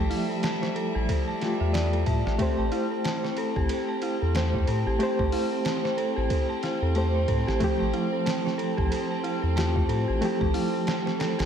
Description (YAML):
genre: trip hop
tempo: 92 BPM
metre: 4/4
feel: swing 59% on 16ths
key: unclear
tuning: A4 = 440 Hz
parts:
  - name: mellow reed electric piano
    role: accompaniment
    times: 0.0-11.5 s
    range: F3 to C5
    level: -29 LUFS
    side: equal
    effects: tremolo, tape echo
  - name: rich studio violin section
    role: sustained chords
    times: 0.0-11.5 s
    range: G3 to E5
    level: -33 LUFS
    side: right 1 dB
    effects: vintage 12-bit sampler grit
  - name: dark detuned synth bell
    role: arpeggios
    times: 0.0-11.5 s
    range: E4 to A5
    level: -30 LUFS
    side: equal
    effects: chorus, ping-pong delay
  - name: round analog bass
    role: bass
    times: 0.0-11.5 s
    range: A1 to A2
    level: -27 LUFS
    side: equal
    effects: none
  - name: trip hop sampler-style drum kit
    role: drums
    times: 0.1-11.5 s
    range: hi-hat, kick drum, ride cymbal, snare drum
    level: -31 LUFS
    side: equal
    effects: none
room: moderate plate reverb, RT60 1.7 s, digital ambience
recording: dreamy mix soaked in reverb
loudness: -24 LUFS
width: side -8 dB against mid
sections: 0.0-11.5 A section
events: none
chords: 0.0 Fadd9/A; 2.4 Am7; 7.6 Fadd9/A